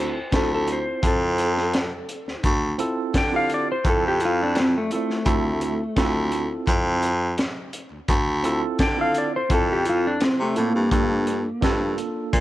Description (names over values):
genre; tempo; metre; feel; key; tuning
straight-eighth soul blues; 85 BPM; 4/4; straight; D minor; A4 = 441 Hz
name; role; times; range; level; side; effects
clean lap steel guitar; melody; 0.0-12.0 s; A3 to G5; -24 LUFS; left 1 dB; none
tine electric piano; accompaniment; 0.0-12.4 s; Bb3 to C5; -28 LUFS; right 4 dB; medium stereo tremolo
warm baritone saxophone; bass; 0.0-12.4 s; D2 to D3; -24 LUFS; equal; none
crunchy breakbeat drum kit; drums; 0.3-12.4 s; hi-hat, kick drum, snare drum; -25 LUFS; equal; none
room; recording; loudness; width
studio ambience; none; -20 LUFS; side -15 dB against mid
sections
0.0-12.4 A section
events
electric slide guitar solo 0.0-12.4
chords
0.0 Dm9; 10.9 Gm9